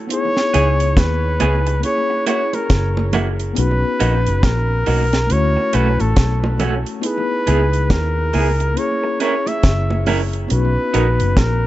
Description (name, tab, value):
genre	lovers rock reggae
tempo	69 BPM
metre	4/4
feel	swing 61% on 16ths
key	C# dorian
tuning	A4 = 440 Hz
part	mellow tine electric piano	accompaniment	0.0-11.7 s	A3 to G#4	-24 LUFS	left 3 dB	medium stereo tremolo, tape echo
part	breathy flugelhorn	melody	0.1-11.7 s	A4 to E5	-21 LUFS	equal	tape echo
part	deep reggae drum kit	drums	0.1-11.6 s	hi-hat, kick drum, snare drum	-19 LUFS	equal	none
part	electric guitar through a small old amp	stabs	0.5-11.1 s	A3 to A#4	-23 LUFS	right 5 dB	tremolo
part	vintage muted fingered electric bass	bass	0.6-11.7 s	F#1 to D#2	-18 LUFS	equal	none
part	bongos	percussion	1.0-11.6 s	none	-29 LUFS	right 3 dB	none
room	light reverb, small room ambience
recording	nothing above 7.9 kHz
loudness	-15 LUFS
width	side -15 dB against mid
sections	0.0-11.7 A section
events	none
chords	0.1 C#m7; 1.8 F#7; 3.6 Bmaj7; 5.3 Dmaj7; 7.0 C#m7; 8.8 F#7; 10.5 Bmaj7